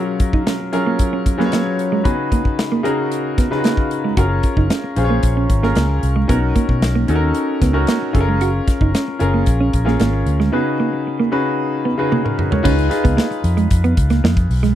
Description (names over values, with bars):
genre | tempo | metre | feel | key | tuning
polished 1980s jazz-funk pop | 113 BPM | 4/4 | straight | F# major | A4 = 439 Hz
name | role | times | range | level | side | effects
clear grand piano | accompaniment | 0.0-14.8 s | C#3 to C#5 | -20 LUFS | left 2 dB | wide subtle chorus
mellow electric guitar | riff | 0.0-14.7 s | G#3 to F#4 | -20 LUFS | right 5 dB | wide subtle chorus
modern studio drum kit | drums | 0.2-14.8 s | crash cymbal, hi-hat, kick drum, snare drum, toms | -19 LUFS | equal | none
vintage muted fingered electric bass | bass | 4.2-14.7 s | F#1 to B2 | -17 LUFS | equal | none
room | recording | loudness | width
little or no reverb | dry, close 1970s-style studio recording | -15 LUFS | side -11 dB against mid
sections
0.0-12.7 A section; 12.7-14.8 B section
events
drum fill 12.1-12.7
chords
0.0 F#maj9; 2.1 C#9sus4; 4.2 F#maj9; 6.3 Bmaj9; 8.1 F#maj9; 10.5 C#9sus4; 12.7 C#7